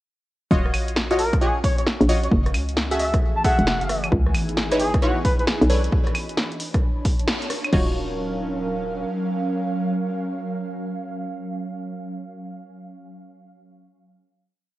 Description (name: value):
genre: UK garage, two-step garage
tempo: 133 BPM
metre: 4/4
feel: swing 64% on 16ths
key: unclear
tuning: A4 = 440 Hz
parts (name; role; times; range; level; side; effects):
- punchy chord stab; stabs; 0.5-12.0 s; D4 to Fb5; -26 LUFS; equal; chorus, tape echo
- hollow knocking FM bass; bass; 0.5-9.0 s; Eb1 to Db2; -22 LUFS; equal; none
- electronic kick drum; drums; 0.5-7.8 s; none; -21 LUFS; equal; cassette tape
- ethereal airy pad; texture; 1.3-12.1 s; Fb3 to Cb6; -31 LUFS; right 1 dB; ensemble chorus, built-in reverb, sidechain pumping
- punchy analog drum machine; drums; 0.7-7.8 s; claves, crash cymbal, hi-hat, rim click, snare drum; -26 LUFS; equal; cassette tape
- trumpet with bucket mute; melody; 1.2-5.4 s; Gb4 to A5; -26 LUFS; equal; cassette tape, tape echo
- airy breathy pad; sustained chords; 4.3-12.0 s; Gb3 to F5; -31 LUFS; right 1 dB; chorus, sidechain pumping
room: light reverb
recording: home recording on cassette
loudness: -20 LUFS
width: side -16 dB against mid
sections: 0.5-7.7 drop; 7.7-11.3 final chord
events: drop 0.5-7.7; band accent 7.3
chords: 0.5 Ebm9; 2.3 Gbm9; 4.1 Dbm9; 5.7 Bm9; 7.7 Ebm9